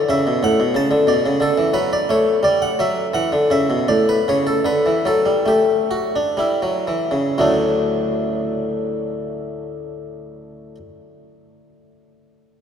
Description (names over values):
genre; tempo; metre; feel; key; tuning
classical, baroque-style suite movement for harpsichord; 59-92 BPM; 4/4; rubato; D major; A4 = 440 Hz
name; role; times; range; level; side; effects
harpsichord; solo; 0.0-10.8 s; D2 to A5; -16 LUFS; equal; none
room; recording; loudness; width
wet cathedral reverb, RT60 5.1 s; none; -16 LUFS; side -8 dB against mid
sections
0.0-7.4 A section; 7.4-11.5 B section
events
slowing down 0.0-7.4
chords
0.0 D5; 1.1 Bm; 2.4 Em; 3.9 D/A; 5.5 A7; 7.4 D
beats
0.42 | 1.08 1.75 2.44 3.16 | 3.90 4.67 5.51 6.42 | 7.42 8.42 9.44 10.46